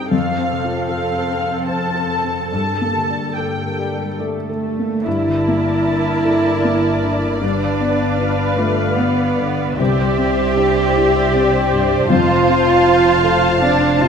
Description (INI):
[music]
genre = cinematic, emotional film score for orchestra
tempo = 66-80 BPM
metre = 3/4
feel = rubato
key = G minor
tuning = A4 = 442 Hz
[part]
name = muted studio violin section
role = melody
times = 0.0-14.1 s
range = E5 to A5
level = -25 LUFS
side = equal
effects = none
[part]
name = felt-muted upright piano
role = accompaniment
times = 0.0-14.1 s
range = C2 to F5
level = -22 LUFS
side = left 2 dB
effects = none
[part]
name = muted symphonic viola section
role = accompaniment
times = 0.0-14.1 s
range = G3 to C5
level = -24 LUFS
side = right 2 dB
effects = none
[part]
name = concert harp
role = arpeggios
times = 0.0-14.1 s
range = F2 to A5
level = -25 LUFS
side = left 8 dB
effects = none
[part]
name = muted symphonic cello section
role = bass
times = 0.0-14.1 s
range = F2 to G4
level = -20 LUFS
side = right 4 dB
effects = none
[part]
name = warm French horn section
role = sustained chords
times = 3.8-14.1 s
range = G3 to G4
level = -21 LUFS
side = left 3 dB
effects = none
[part]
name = muted symphonic violin section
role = second line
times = 5.1-14.1 s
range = D5 to F5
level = -24 LUFS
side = right 1 dB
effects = none
[part]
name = muted studio double bass section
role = bass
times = 5.1-14.1 s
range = F1 to C2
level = -24 LUFS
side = right 3 dB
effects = none
[sound]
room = moderate scoring stage reverb, RT60 1.6 s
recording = close, detailed microphones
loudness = -15 LUFS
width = side -6 dB against mid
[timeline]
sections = 0.0-5.1 A section; 5.1-14.1 B section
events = none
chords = 0.1 F; 2.5 Gmadd9; 7.4 G7; 9.8 Cadd9; 12.1 F